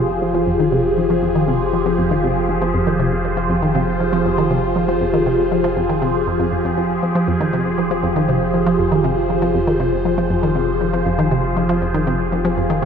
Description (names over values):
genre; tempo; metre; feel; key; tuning
ambient, sequencer-driven space music; 119 BPM; 4/4; straight; F minor; A4 = 440 Hz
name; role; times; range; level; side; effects
phased analog pad; sustained chords; 0.0-12.9 s; F3 to C5; -18 LUFS; equal; phaser, chorus
resonant blip pluck; riff; 0.0-12.9 s; F2 to F3; -19 LUFS; equal; chorus, tape echo
warm sub bass; bass; 0.0-12.9 s; F1; -28 LUFS; equal; tube saturation
room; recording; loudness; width
wet lush hall reverb, RT60 2.7 s; dreamy mix soaked in reverb; -15 LUFS; side -7 dB against mid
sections
0.0-12.9 A section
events
filter sweep on synth arpeggio sound 0.0-12.9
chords
0.0 Fmadd9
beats
0.47 | 0.98 1.48 1.98 2.49 | 2.99 3.50 4.00 4.50 | 5.01 5.51 6.02 6.52 | 7.03 7.53 8.04 8.54 | 9.04 9.55 10.05 10.56 | 11.06 11.56 12.07 12.57